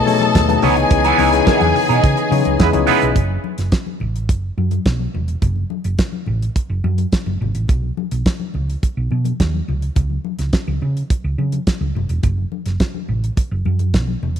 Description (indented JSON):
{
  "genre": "disco",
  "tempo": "106 BPM",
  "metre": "4/4",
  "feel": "straight",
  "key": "F# dorian",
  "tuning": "A4 = 440 Hz",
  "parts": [
    { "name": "rich studio string section", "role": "second line", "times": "0.0-3.1 s", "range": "G#4 to A5", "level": "-19 LUFS", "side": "left 2 dB", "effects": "none" },
    { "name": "mellow tine electric piano", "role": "accompaniment", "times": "0.0-3.2 s", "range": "B2 to C#5", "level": "-18 LUFS", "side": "left 10 dB", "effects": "medium stereo tremolo" },
    { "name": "mellow tonewheel organ", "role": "sustained chords", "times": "0.0-3.1 s", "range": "C#3 to D#5", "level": "-23 LUFS", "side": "right 2 dB", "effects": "overdrive, chorus vibrato, slow rotary speaker" },
    { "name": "damped 70s drum kit", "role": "drums", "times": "0.1-14.4 s", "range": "hi-hat, kick drum, snare drum", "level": "-18 LUFS", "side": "right 1 dB", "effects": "none" },
    { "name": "congas", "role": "percussion", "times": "0.1-14.4 s", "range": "none", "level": "-27 LUFS", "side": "left 9 dB", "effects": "none" },
    { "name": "electric guitar at the edge of break-up", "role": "accompaniment", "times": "0.2-3.1 s", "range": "E3 to D#4", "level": "-22 LUFS", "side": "right 13 dB", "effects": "wah" },
    { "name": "hollow-body short-scale fingered electric bass", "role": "bass", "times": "0.4-14.4 s", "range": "E1 to C#3", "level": "-19 LUFS", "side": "right 1 dB", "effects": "none" },
    { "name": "clear horn section", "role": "stabs", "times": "2.6-3.1 s", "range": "G#3 to B4", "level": "-21 LUFS", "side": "right 11 dB", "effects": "slapback echo" }
  ],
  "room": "light reverb, small room ambience",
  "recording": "1960s-style stereo with parts hard left and right",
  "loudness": "-15 LUFS",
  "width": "side -8 dB against mid",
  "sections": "0.0-3.2 A section; 3.2-14.4 B section",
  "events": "band accent 0.9-3.2",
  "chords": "0.0 B13; 0.6 C#m9; 3.2 F#m; 7.7 Badd9; 9.7 N.C."
}